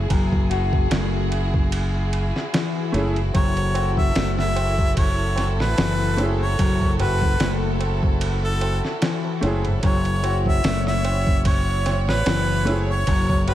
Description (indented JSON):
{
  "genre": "trip hop",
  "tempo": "74 BPM",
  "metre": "4/4",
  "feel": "swing 55% on 16ths",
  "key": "F# minor",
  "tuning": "A4 = 444 Hz",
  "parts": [
    { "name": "rich studio violin section", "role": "sustained chords", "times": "0.0-13.5 s", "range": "E4 to C#5", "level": "-30 LUFS", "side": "right 1 dB", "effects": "none" },
    { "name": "modern bright fingered electric bass", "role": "bass", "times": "0.0-13.5 s", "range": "F#1 to A1", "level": "-23 LUFS", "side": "equal", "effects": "tube saturation" },
    { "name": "mellow electric guitar", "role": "arpeggios", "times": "0.1-13.5 s", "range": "E3 to F#4", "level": "-28 LUFS", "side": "left 4 dB", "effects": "digital delay" },
    { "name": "dusty soul sampler-style drum kit", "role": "drums", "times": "0.1-13.5 s", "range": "kick drum, ride cymbal, snare drum", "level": "-24 LUFS", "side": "equal", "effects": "none" },
    { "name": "bright upright piano", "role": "accompaniment", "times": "2.9-12.9 s", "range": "A3 to G#4", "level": "-28 LUFS", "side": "equal", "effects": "harmonic tremolo, vintage 12-bit sampler grit, tape echo" },
    { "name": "tabla", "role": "percussion", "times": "3.3-13.5 s", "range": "none", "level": "-34 LUFS", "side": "right 3 dB", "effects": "none" },
    { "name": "clear harmonica", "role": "melody", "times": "3.4-13.5 s", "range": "A4 to E5", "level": "-26 LUFS", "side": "equal", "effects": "tape echo" }
  ],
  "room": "small room ambience",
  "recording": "none",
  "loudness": "-19 LUFS",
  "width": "side -13 dB against mid",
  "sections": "0.0-13.5 A section",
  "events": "none",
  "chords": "0.0 F#m9",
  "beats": "| 0.10 0.91 1.72 2.53 | 3.34 4.15 4.96 5.78 | 6.59 7.40 8.21 9.02 | 9.83 10.64 11.45 12.26 | 13.07"
}